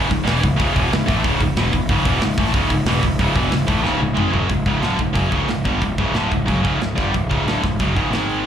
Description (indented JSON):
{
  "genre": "heavy metal",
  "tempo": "184 BPM",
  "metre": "4/4",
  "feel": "straight",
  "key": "C# minor",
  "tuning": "A4 = 440 Hz",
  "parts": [
    { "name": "tight distorted guitar", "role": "riff", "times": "0.0-8.5 s", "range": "C#2 to A3", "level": "-19 LUFS", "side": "equal", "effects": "distortion, slapback echo" },
    { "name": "fuzz picked electric bass", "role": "bass", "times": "0.0-8.4 s", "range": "C#1 to A1", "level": "-22 LUFS", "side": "equal", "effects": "overdrive" },
    { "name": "tight metal drum kit", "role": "drums", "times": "0.1-8.4 s", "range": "hi-hat, kick drum, snare drum, toms", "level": "-23 LUFS", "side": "equal", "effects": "none" }
  ],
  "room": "little or no reverb",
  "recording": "live gig heard through the venue's PA, club reverb",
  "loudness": "-16 LUFS",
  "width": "side -9 dB against mid",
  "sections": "0.0-4.5 A section; 4.5-8.5 B section",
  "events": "drum fill 3.9-4.5",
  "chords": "0.0 C#m; 4.5 C#5; 8.1 G#5",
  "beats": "0.27 | 0.60 0.92 1.25 1.57 | 1.90 2.22 2.55 2.87 | 3.20 3.52 3.85 4.18 | 4.50 4.83 5.16 5.49 | 5.82 6.15 6.48 6.80 | 7.13 7.46 7.79 8.12 | 8.45"
}